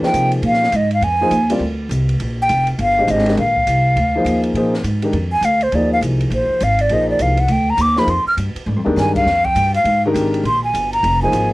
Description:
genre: modal jazz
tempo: 204 BPM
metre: 4/4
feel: swing 62% on 8ths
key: Bb mixolydian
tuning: A4 = 440 Hz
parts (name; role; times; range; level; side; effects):
- breathy hollow jazz flute; melody; 0.0-11.5 s; C5 to F6; -16 LUFS; equal; cassette tape
- warm grand piano; accompaniment; 0.0-11.5 s; Eb3 to Eb5; -20 LUFS; left 1 dB; none
- upright bass; bass; 0.0-11.5 s; F1 to C3; -19 LUFS; equal; none
- open jazz drum kit; drums; 0.0-11.4 s; crash cymbal, hi-hat, kick drum, ride cymbal, snare drum, toms; -30 LUFS; right 1 dB; cassette tape
room: little or no reverb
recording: home recording on cassette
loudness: -14 LUFS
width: side -19 dB against mid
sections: 0.0-4.6 A section; 4.6-11.5 B section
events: flute solo 4.6-11.5; drum fill 8.7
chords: 0.0 Bb9sus4

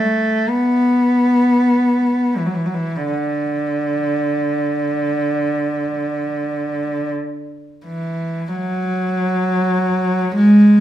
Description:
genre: classical, free, expressive piece for unaccompanied cello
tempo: 37-52 BPM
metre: 4/4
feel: rubato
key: unclear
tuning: A4 = 440 Hz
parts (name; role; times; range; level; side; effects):
- warm cello; solo; 0.0-10.8 s; D3 to B3; -15 LUFS; equal; none
room: wet stone room reverb, RT60 1.2 s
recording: none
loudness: -16 LUFS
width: side -12 dB against mid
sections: 0.0-8.6 A section; 8.6-10.8 A section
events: none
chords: none

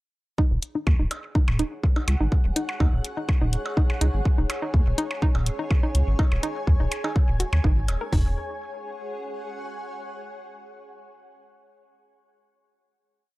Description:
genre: minimal techno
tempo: 124 BPM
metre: 4/4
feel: straight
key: Eb minor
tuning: A4 = 439 Hz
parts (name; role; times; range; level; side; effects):
- hollow square pluck; riff; 0.4-8.3 s; Eb4 to Bb4; -30 LUFS; right 1 dB; chorus, sidechain pumping, tape echo
- house drum kit; drums; 0.4-8.2 s; hi-hat, kick drum, toms; -21 LUFS; equal; none
- granular cloud pad; texture; 1.6-10.0 s; Ab4 to Ab5; -35 LUFS; equal; built-in reverb, sidechain pumping
- rubbery square bass; bass; 0.5-8.4 s; Eb1 to Eb2; -23 LUFS; equal; sidechain pumping
- electronic hi-hat; drums; 0.6-8.0 s; none; -30 LUFS; left 2 dB; none
- percussion blips; percussion; 0.9-8.0 s; none; -34 LUFS; right 1 dB; overdrive, tape echo
room: little or no reverb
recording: dry, gritty hardware recording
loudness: -21 LUFS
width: side -19 dB against mid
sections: 0.4-8.1 groove; 8.1-10.1 final chord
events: none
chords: 0.4 Ebsus4; 8.1 Ebm

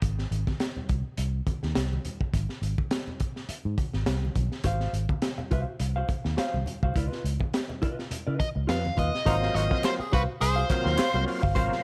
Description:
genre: funk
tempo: 104 BPM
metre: 4/4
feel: swing 56% on 16ths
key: Ab mixolydian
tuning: A4 = 440 Hz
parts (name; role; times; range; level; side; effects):
- vintage muted fingered electric bass; bass; 0.0-11.7 s; G1 to Db3; -31 LUFS; equal; none
- crunchy breakbeat drum kit; drums; 0.0-11.8 s; hi-hat, kick drum, snare drum; -32 LUFS; equal; none
- congas; percussion; 0.0-9.1 s; none; -42 LUFS; equal; none
- mellow electric guitar; accompaniment; 4.6-11.8 s; F4 to F5; -36 LUFS; equal; none
- nasal lead guitar with a parked wah; melody; 8.4-11.2 s; Cb5 to F5; -32 LUFS; equal; overdrive
- raspy tenor saxophone; second line; 9.3-11.6 s; Eb4 to C5; -35 LUFS; equal; none
- overdriven tonewheel organ; stabs; 9.3-11.8 s; Gb3 to F4; -33 LUFS; equal; chorus vibrato, slow rotary speaker
- group handclap; percussion; 9.8-11.1 s; none; -43 LUFS; equal; none
room: light reverb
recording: none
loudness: -28 LUFS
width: mono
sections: 0.0-9.3 A section; 9.3-11.8 B section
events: break 0.0-4.6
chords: 0.0 Ab6; 7.0 Db9; 9.3 Ab13

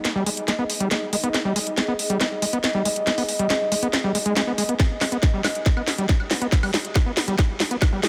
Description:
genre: psychedelic trance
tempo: 139 BPM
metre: 4/4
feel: straight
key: G# harmonic minor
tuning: A4 = 440 Hz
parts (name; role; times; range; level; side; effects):
- resonant blip pluck; second line; 0.0-1.7, 6.3-8.1 s; D#3 to D#4; -43 LUFS; equal; none
- garage drum kit; drums; 0.0-8.1 s; hi-hat, snare drum, woodblock; -26 LUFS; equal; none
- warbly tape-like pad; texture; 0.0-8.1 s; D#4 to D#5; -31 LUFS; equal; chorus, built-in reverb, phaser, sidechain pumping
- overdriven acid bass; riff; 0.2-8.1 s; G3 to B3; -28 LUFS; equal; distortion, sidechain pumping, delay
- electronic kick drum; drums; 4.8-7.9 s; none; -22 LUFS; equal; none
room: wet lush hall reverb, RT60 2.3 s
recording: none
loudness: -22 LUFS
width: mono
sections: 0.0-8.1 A section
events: build-up 0.0-8.1; drum fill 0.0-8.1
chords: 0.0 G#5

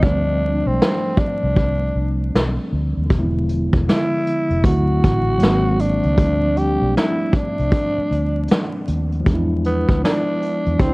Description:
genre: lo-fi hip hop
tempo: 78 BPM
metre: 4/4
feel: swing 64% on 16ths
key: unclear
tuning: A4 = 440 Hz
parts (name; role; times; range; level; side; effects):
- growling tenor saxophone; melody; 0.0-10.9 s; B3 to G4; -22 LUFS; equal; low-pass filter, analog delay
- mellow tine electric piano; accompaniment; 0.0-10.9 s; D3 to E4; -22 LUFS; equal; medium stereo tremolo, cassette tape, low-pass filter
- vintage muted fingered electric bass; bass; 0.0-10.9 s; E1 to E2; -21 LUFS; equal; none
- vintage brush drum kit; drums; 0.0-10.9 s; hi-hat, kick drum, snare drum; -19 LUFS; equal; none
room: light reverb, small room ambience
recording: worn, warbling old tape, cassette tape, vinyl crackle, warbly pitch drift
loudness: -16 LUFS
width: side -24 dB against mid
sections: 0.0-10.9 A section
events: break 0.0-3.1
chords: 0.0 G9sus4; 3.1 E7b9; 4.6 D9; 5.4 Ab9; 6.2 G9sus4; 9.3 E7b9

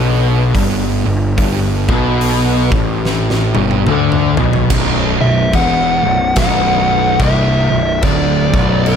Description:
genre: stoner and doom metal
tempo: 72 BPM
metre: 4/4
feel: swing 61% on 8ths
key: B minor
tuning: A4 = 437 Hz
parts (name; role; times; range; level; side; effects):
- fuzz guitar; riff; 0.0-9.0 s; B1 to D3; -18 LUFS; left 10 dB; distortion
- fuzz guitar; riff; 0.0-9.0 s; B1 to D3; -22 LUFS; left 1 dB; none
- thick fuzz guitar; riff; 0.0-9.0 s; B1 to D3; -18 LUFS; right 9 dB; distortion
- fuzz picked electric bass; bass; 0.0-9.0 s; B0 to D2; -19 LUFS; equal; overdrive
- big rock drum kit; drums; 0.5-9.0 s; crash cymbal, hi-hat, kick drum, snare drum, toms; -19 LUFS; equal; none
- fuzz lead guitar; melody; 5.2-9.0 s; B4 to F#5; -16 LUFS; left 2 dB; distortion
room: studio reverb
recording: none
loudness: -11 LUFS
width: side -7 dB against mid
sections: 0.0-4.7 A section; 4.7-9.0 B section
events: drum fill 3.0-4.7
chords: 0.0 G5; 4.7 Bm

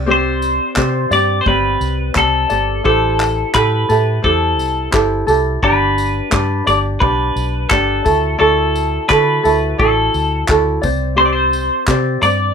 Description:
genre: acoustic pop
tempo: 86 BPM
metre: 4/4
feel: swing 55% on 16ths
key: unclear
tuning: A4 = 438 Hz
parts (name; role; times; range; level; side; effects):
- ukulele; accompaniment; 0.0-12.5 s; C4 to D5; -17 LUFS; right 1 dB; none
- vintage muted fingered electric bass; bass; 0.0-12.5 s; G1 to D3; -20 LUFS; equal; none
- twelve-string electric guitar; melody; 0.1-12.5 s; A4 to D5; -17 LUFS; left 2 dB; none
- vintage brush drum kit; drums; 0.4-12.4 s; handclaps, kick drum, tambourine; -21 LUFS; equal; none
- group handclap; percussion; 0.8-12.1 s; none; -27 LUFS; right 4 dB; none
room: light reverb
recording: none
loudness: -13 LUFS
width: side -6 dB against mid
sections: 0.0-12.5 A section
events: none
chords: 0.0 Csus2; 2.9 Am7; 5.6 G; 8.1 Dadd9; 10.8 Csus2

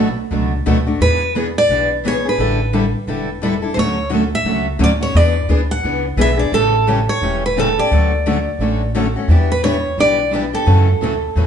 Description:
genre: acoustic string swing (jazz manouche)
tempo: 174 BPM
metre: 4/4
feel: swing 60% on 8ths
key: unclear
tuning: A4 = 440 Hz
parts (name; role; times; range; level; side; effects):
- picked steel-string acoustic guitar; accompaniment; 0.0-11.5 s; B2 to A4; -21 LUFS; left 4 dB; none
- picked steel-string acoustic guitar; accompaniment; 0.0-11.5 s; B2 to B4; -23 LUFS; right 3 dB; none
- upright bass; bass; 0.0-11.5 s; E1 to F#2; -18 LUFS; equal; none
- picked steel-string acoustic guitar; melody; 1.0-11.5 s; A4 to F#5; -18 LUFS; right 1 dB; none
room: wet studio reverb, RT60 0.9 s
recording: heard from further back in the room, nothing above 10.9 kHz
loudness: -14 LUFS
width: side -8 dB against mid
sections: 0.0-9.3 A section; 9.3-11.5 B section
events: none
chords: 0.0 Bm7; 1.0 E7; 2.4 A7sus4; 3.8 Dmaj7; 5.1 E7; 6.5 A7; 7.9 Dmaj7; 9.3 Em7; 10.7 F#m7

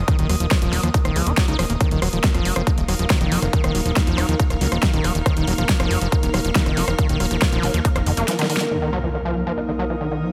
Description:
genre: psychedelic trance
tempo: 139 BPM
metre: 4/4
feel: straight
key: Eb minor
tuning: A4 = 440 Hz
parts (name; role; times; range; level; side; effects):
- fat analog bass; bass; 0.0-8.2 s; Eb1 to Eb2; -25 LUFS; equal; none
- airy breathy pad; texture; 0.0-10.3 s; Bb3 to F6; -32 LUFS; equal; chorus, sidechain pumping
- overdriven acid bass; riff; 0.1-10.3 s; Eb3 to F4; -27 LUFS; equal; distortion, sidechain pumping, delay
- big-room dance drum kit; drums; 0.1-8.7 s; hi-hat, rim click, snare drum; -27 LUFS; equal; overdrive, low-pass filter on snare, studio reverb, low-pass filter on hats, low-pass filter on cymbals
- electronic kick drum; drums; 0.1-7.9 s; none; -22 LUFS; equal; studio reverb
- swarming drone; sustained chords; 2.9-10.3 s; Eb4 to Bb4; -32 LUFS; equal; built-in reverb, sidechain pumping
- impact; sound effects; 8.7-10.3 s; none; -30 LUFS; equal; none
room: light reverb, digital ambience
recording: none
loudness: -20 LUFS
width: mono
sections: 0.0-8.7 A section; 8.7-10.3 B section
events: drop 0.0-8.7; drum fill 8.3-8.7; impact 8.7-10.3; filter sweep on acid bass 8.7-10.3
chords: 0.0 Eb5

